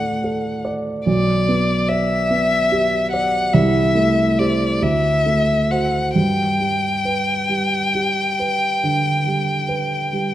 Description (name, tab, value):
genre	classical, romantic duo for violin and grand piano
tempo	44-49 BPM (dotted quarters)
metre	12/8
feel	rubato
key	G major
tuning	A4 = 439 Hz
part	rich violin	melody	0.0-10.3 s	D5 to G5	-19 LUFS	left 2 dB	none
part	warm grand piano	accompaniment	0.0-10.3 s	B1 to D5	-19 LUFS	right 2 dB	none
room	wet recital hall reverb, RT60 1.6 s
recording	none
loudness	-16 LUFS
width	side -13 dB against mid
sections	0.0-10.3 A section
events	none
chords	0.0 D; 1.1 G/B; 3.5 Am7/C; 4.8 D7; 6.2 G